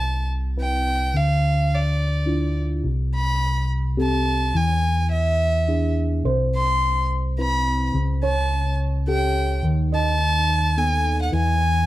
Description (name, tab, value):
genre	acoustic folk-pop ballad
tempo	106 BPM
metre	3/4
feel	straight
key	unclear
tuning	A4 = 435 Hz
part	clear violin	melody	0.0-11.9 s	D5 to C6	-24 LUFS	right 1 dB	none
part	tine electric piano	accompaniment	0.0-11.9 s	C3 to B4	-25 LUFS	left 2 dB	phaser
part	fingered electric bass	bass	0.0-11.9 s	C2 to E2	-22 LUFS	equal	none
part	felt-muted upright piano	arpeggios	6.3-11.6 s	C5 to D#5	-30 LUFS	right 4 dB	none
room	light reverb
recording	dark, warm production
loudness	-19 LUFS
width	side -15 dB against mid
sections	0.0-11.9 A section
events	none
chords	0.0 Cmaj7; 1.1 Dmadd9; 2.8 Am7/C; 4.5 E7; 6.2 Cmaj7; 7.9 A7/C#; 9.6 B7/D#; 11.3 E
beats	0.02 0.58 | 1.15 1.72 2.28 | 2.85 3.41 3.98 | 4.54 5.11 5.68 | 6.24 6.81 7.38 | 7.95 8.51 9.07 | 9.64 10.20 10.77 | 11.33